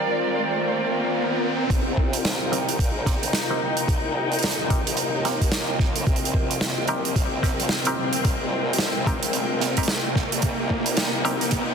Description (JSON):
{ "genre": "glitch hop", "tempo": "110 BPM", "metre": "4/4", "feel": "swing 60% on 16ths", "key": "C minor", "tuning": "A4 = 443 Hz", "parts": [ { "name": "dark chamber string section", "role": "sustained chords", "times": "0.0-11.7 s", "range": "C3 to D5", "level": "-28 LUFS", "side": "left 2 dB", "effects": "sidechain pumping, low-pass filter" }, { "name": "muted clav", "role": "stabs", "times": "0.0-11.7 s", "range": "C4 to Bb4", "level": "-30 LUFS", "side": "equal", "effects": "phaser, sidechain pumping, low-pass filter, ping-pong delay" }, { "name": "riser", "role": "sound effects", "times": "0.0-11.7 s", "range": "none", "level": "-31 LUFS", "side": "right 1 dB", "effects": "none" }, { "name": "airy breathy pad", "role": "texture", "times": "0.0-11.7 s", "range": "C4 to G5", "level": "-29 LUFS", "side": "right 1 dB", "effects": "chorus, sidechain pumping" }, { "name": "formant-sweep wobble bass", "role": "bass", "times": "1.7-11.7 s", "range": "Bb1 to F2", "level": "-31 LUFS", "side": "equal", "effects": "chorus, high-pass filter" }, { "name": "electronic kick drum", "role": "drums", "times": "1.7-11.7 s", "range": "none", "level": "-23 LUFS", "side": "equal", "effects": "none" }, { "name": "huge arena drum kit", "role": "drums", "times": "1.7-11.6 s", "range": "hi-hat, snare drum", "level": "-26 LUFS", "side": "right 2 dB", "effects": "none" } ], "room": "moderate lush hall reverb, RT60 2.9 s", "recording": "dense, heavily limited modern master, high-pass filter", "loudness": "-21 LUFS", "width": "side -6 dB against mid", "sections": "0.0-1.7 A section; 1.7-11.7 B section", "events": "riser 0.0-1.7, 1.7-11.7; build-up 1.7-11.7; filter sweep on clav 1.7-11.7", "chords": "0.0 Cm7" }